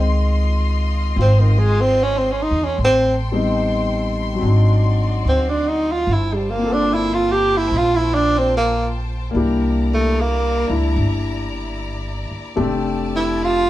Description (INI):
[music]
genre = jazz ballad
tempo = 74 BPM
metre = 4/4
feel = swing 67% on 8ths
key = unclear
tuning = A4 = 440 Hz
[part]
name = breathy tenor saxophone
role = melody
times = 0.0-13.7 s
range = Eb3 to G4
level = -18 LUFS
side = right 1 dB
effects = none
[part]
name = warm concert grand piano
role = accompaniment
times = 0.0-13.7 s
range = Eb3 to A4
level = -23 LUFS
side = left 3 dB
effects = none
[part]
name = clear symphonic string section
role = sustained chords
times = 0.0-13.7 s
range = E4 to C6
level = -30 LUFS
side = left 4 dB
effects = none
[part]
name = upright bass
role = bass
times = 0.0-13.7 s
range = F1 to E2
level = -20 LUFS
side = equal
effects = none
[sound]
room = wet studio reverb, RT60 0.8 s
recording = band playing live in one room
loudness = -16 LUFS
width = side -14 dB against mid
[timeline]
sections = 0.0-13.7 A section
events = tenor saxophone solo 0.0-13.7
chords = 0.0 Dbmaj9; 2.8 Am7b5; 4.4 Ab7#11; 6.1 Gm11; 9.3 C9; 12.6 F69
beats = 0.35 1.15 1.96 | 2.77 3.59 4.41 5.24 | 6.06 6.88 7.71 8.53 | 9.35 10.15 10.96 11.77 | 12.57 13.38